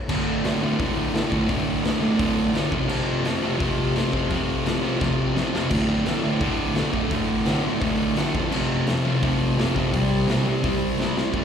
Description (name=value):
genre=garage rock duo or trio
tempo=171 BPM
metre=4/4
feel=straight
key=D minor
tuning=A4 = 441 Hz
part: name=fuzz guitar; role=riff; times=0.1-11.4 s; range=D2 to C4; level=-21 LUFS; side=equal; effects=distortion
part: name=raw garage drum kit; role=drums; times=0.1-11.4 s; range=crash cymbal, hi-hat, kick drum, snare drum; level=-27 LUFS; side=left 1 dB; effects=none
room=light reverb, studio ambience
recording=live gig heard through the venue's PA, recital hall reverb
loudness=-20 LUFS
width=side -8 dB against mid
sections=0.1-11.3 A section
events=drum fill 5.0-5.7, 11.0-11.3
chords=0.1 D5; 2.7 F5; 5.7 D5; 8.3 F5; 9.9 C5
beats=| 0.09 0.44 0.79 1.14 | 1.49 1.84 2.19 2.54 | 2.89 3.25 3.60 3.95 | 4.30 4.65 5.00 5.35 | 5.71 6.06 6.41 6.76 | 7.11 7.46 7.82 8.17 | 8.52 8.87 9.22 9.57 | 9.93 10.28 10.63 10.98 | 11.33